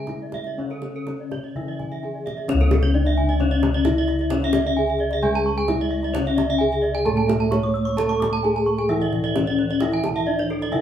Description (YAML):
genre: Balinese gamelan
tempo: 131 BPM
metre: 4/4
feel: straight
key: C# pelog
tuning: A4 = 439 Hz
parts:
  - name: gamelan-type bronze metallophone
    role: melody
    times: 0.0-10.8 s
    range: C#4 to C#5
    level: -24 LUFS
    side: left 2 dB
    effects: none
  - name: gamelan-type bronze metallophone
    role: accompaniment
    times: 0.0-10.8 s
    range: C#3 to A3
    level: -30 LUFS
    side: right 3 dB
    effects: none
  - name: gamelan-type bronze metallophone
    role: arpeggios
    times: 0.0-10.7 s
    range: A4 to D6+35c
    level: -29 LUFS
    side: right 6 dB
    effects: none
  - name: gamelan-type bossed gongs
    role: bass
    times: 0.0-10.8 s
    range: C#2 to A4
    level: -25 LUFS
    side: left 1 dB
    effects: none
  - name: gamelan-type bronze metallophone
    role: arpeggios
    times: 0.1-10.8 s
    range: G#4 to E6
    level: -30 LUFS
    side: left 2 dB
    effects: none
  - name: kendang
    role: percussion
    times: 0.1-10.7 s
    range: none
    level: -30 LUFS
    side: right 2 dB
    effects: none
room: wet large studio reverb, RT60 0.9 s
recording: band playing live in one room, small room ambience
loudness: -19 LUFS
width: side -10 dB against mid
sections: 0.0-2.5 A section; 2.5-10.8 B section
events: none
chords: none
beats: 0.08 | 0.58 1.07 1.55 2.02 | 2.49 2.94 3.40 3.86 | 4.32 4.78 5.24 5.69 | 6.15 6.61 7.07 7.53 | 7.98 8.44 8.90 9.36 | 9.82 10.27 10.73